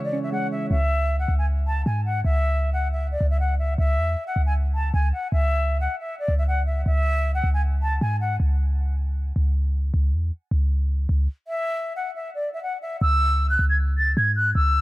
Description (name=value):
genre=hip hop, trap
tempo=156 BPM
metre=4/4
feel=half-time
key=C# phrygian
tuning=A4 = 441 Hz
part: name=mellow concert flute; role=melody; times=0.0-8.4, 11.5-14.8 s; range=D5 to A6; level=-25 LUFS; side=left 1 dB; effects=tape echo
part: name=soft electric-piano-like synth keys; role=accompaniment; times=0.0-0.7 s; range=C#3 to C#5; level=-27 LUFS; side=right 2 dB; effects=chorus
part: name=clean 808-style bass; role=bass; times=0.7-14.8 s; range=C#2 to G#2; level=-21 LUFS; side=equal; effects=none
room=small room ambience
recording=none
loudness=-21 LUFS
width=side -18 dB against mid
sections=0.7-13.0 A section; 13.0-14.8 B section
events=stop 11.5-13.0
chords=0.0 C#m